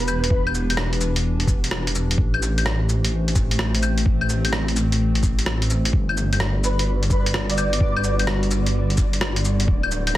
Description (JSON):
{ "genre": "future garage", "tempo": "128 BPM", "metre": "4/4", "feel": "swing 66% on 16ths", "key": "unclear", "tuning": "A4 = 440 Hz", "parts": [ { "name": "breathy flute-like synth lead", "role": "melody", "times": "0.0-0.5, 6.6-8.1 s", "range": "B4 to D5", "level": "-28 LUFS", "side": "right 1 dB", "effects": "ensemble chorus, digital delay" }, { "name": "warbly tape-like pad", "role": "sustained chords", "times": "0.0-10.2 s", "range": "D3 to C5", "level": "-28 LUFS", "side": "left 1 dB", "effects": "chorus, built-in reverb, phaser, sidechain pumping" }, { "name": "dark detuned saw bass", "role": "bass", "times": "0.0-10.2 s", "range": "D1 to A1", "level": "-22 LUFS", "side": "equal", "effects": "sidechain pumping" }, { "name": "lo-fi sampler-style drum kit", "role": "drums", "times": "0.0-10.2 s", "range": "cabasa, claves, hi-hat, rim click", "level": "-25 LUFS", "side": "left 1 dB", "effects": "soft clipping on snare" }, { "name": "electronic kick drum", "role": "drums", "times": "0.3-9.8 s", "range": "none", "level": "-21 LUFS", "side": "equal", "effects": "none" }, { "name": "flickering grainy texture", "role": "texture", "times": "6.3-10.2 s", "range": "D4 to D5", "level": "-35 LUFS", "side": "left 2 dB", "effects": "built-in reverb" } ], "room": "light reverb", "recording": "dense, heavily limited modern master, vinyl crackle", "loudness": "-18 LUFS", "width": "side -15 dB against mid", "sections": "0.0-10.2 A section", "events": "none", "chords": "0.0 Em7; 2.2 Am7; 5.9 Gmaj7" }